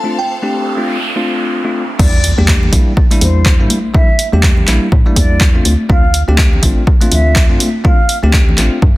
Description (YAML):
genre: deep house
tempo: 123 BPM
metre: 4/4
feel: swing 58% on 16ths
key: unclear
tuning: A4 = 439 Hz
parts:
  - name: glassy synth bell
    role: melody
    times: 0.0-0.9 s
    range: G5 to A5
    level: -22 LUFS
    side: right 1 dB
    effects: chorus, tremolo, tape echo
  - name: bell-like tine electric piano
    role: stabs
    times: 0.0-8.8 s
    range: G3 to G4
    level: -18 LUFS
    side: equal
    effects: sidechain pumping, low-pass filter, tape echo
  - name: noise sweep and impact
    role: sound effects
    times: 0.5-3.9 s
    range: none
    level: -21 LUFS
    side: right 1 dB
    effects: none
  - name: clear symphonic string section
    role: texture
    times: 0.0-2.0 s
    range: D4 to F5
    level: -27 LUFS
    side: left 2 dB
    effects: sidechain pumping
  - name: rich studio violin section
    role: texture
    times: 0.0-2.0 s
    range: C5 to C6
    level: -36 LUFS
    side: equal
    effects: none
  - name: mellow concert flute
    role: melody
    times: 2.0-8.2 s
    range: C5 to F5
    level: -22 LUFS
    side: right 1 dB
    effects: tape echo
  - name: organ-like FM bass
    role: bass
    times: 2.0-8.9 s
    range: A1 to A2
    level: -14 LUFS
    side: equal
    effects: sidechain pumping
  - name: electronic kick drum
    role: drums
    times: 2.0-8.9 s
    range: none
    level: -11 LUFS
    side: equal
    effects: overdrive
  - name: punchy analog drum machine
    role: drums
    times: 2.0-8.7 s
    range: crash cymbal, handclaps, hi-hat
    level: -17 LUFS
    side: equal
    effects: overdrive
  - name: congas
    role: percussion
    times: 2.4-8.6 s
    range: none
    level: -22 LUFS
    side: left 2 dB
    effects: none
room: light reverb, digital ambience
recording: dense, heavily limited modern master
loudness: -9 LUFS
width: side -18 dB against mid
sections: 0.0-2.0 A section; 2.0-9.0 B section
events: noise sweep 0.5-2.0; drop 2.0-9.0; impact 2.0-3.9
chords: 0.0 Dm7; 2.0 Em7b5; 5.7 Dm7